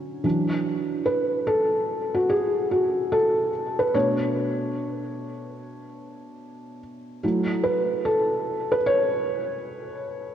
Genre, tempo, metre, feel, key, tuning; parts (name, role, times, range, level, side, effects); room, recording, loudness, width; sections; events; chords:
hip hop; 73 BPM; 4/4; swing 63% on 16ths; A4 = 437 Hz
felt-muted upright piano; solo; 0.0-10.3 s; B2 to C#5; -23 LUFS; equal; cassette tape, diffuse ambient delay
wet lush hall reverb, RT60 3.0 s; dreamy mix soaked in reverb, cassette tape; -22 LUFS; side -9 dB against mid
0.0-10.3 A section
felt piano solo 0.0-10.3
0.2 Esus2; 3.9 Bm9; 7.2 F#m7